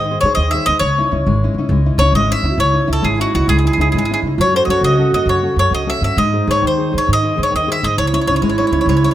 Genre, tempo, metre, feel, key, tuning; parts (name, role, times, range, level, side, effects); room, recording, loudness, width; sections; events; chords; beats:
italian folk, Italian serenade; 134 BPM (dotted quarters); 6/8; straight; C# harmonic minor; A4 = 441 Hz
bowl-back mandolin; melody; 0.0-9.1 s; F#4 to E5; -17 LUFS; left 1 dB
nylon-string guitar; accompaniment; 0.0-9.1 s; C#3 to B#4; -21 LUFS; left 5 dB
upright bass; bass; 0.0-9.1 s; G#1 to G#2; -18 LUFS; equal
mellow clarinet; second line; 2.5-9.1 s; D#4 to F#4; -20 LUFS; right 6 dB
moderate recital hall reverb, RT60 1.4 s; close, detailed microphones; -13 LUFS; side -12 dB against mid
0.0-2.6 A section; 2.6-9.1 A section
0.0 G#; 0.8 C#madd9; 4.4 F#m; 6.2 G#; 8.0 C#madd9
0.38 | 0.82 1.26 | 1.71 2.15 | 2.60 3.05 | 3.50 3.95 | 4.39 4.84 | 5.28 5.73 | 6.18 6.63 | 7.08 7.53 | 7.98 8.42 | 8.87